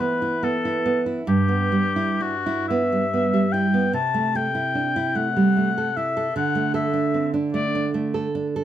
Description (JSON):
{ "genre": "romantic duo for oboe and classical guitar", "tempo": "40-52 BPM (dotted quarters)", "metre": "6/8", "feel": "rubato", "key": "E minor", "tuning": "A4 = 440 Hz", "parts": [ { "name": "warm oboe", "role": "melody", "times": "0.0-7.9 s", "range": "F#4 to A5", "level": "-24 LUFS", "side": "left 5 dB", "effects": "plate reverb" }, { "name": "nylon-string guitar", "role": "accompaniment", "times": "0.0-8.6 s", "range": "G2 to A4", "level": "-22 LUFS", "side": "right 2 dB", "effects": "none" } ], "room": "light reverb", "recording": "none", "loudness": "-20 LUFS", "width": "side -11 dB against mid", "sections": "0.0-8.6 A section", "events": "none", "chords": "0.0 E5; 1.3 Em/G; 3.9 Am7/C; 6.3 D5" }